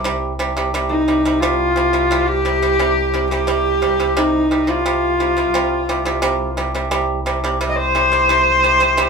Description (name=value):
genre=mongolian traditional, Mongolian folk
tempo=87 BPM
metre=4/4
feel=straight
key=C yu mode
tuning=A4 = 441 Hz
part: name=pipa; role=arpeggios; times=0.0-9.1 s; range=C3 to G3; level=-21 LUFS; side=right 2 dB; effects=none
part: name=muted double bass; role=drone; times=0.0-9.1 s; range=C2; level=-25 LUFS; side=equal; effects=none
part: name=clear horsehead fiddle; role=melody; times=0.9-9.1 s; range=Eb4 to Eb5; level=-16 LUFS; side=equal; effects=none
room=wet studio reverb, RT60 0.5 s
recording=band playing live in one room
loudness=-15 LUFS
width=side -5 dB against mid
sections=0.0-9.1 A section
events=none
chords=0.0 C5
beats=| 0.04 0.72 1.41 2.10 | 2.78 3.47 4.16 4.84 | 5.53 6.22 6.91 7.60 | 8.28 8.97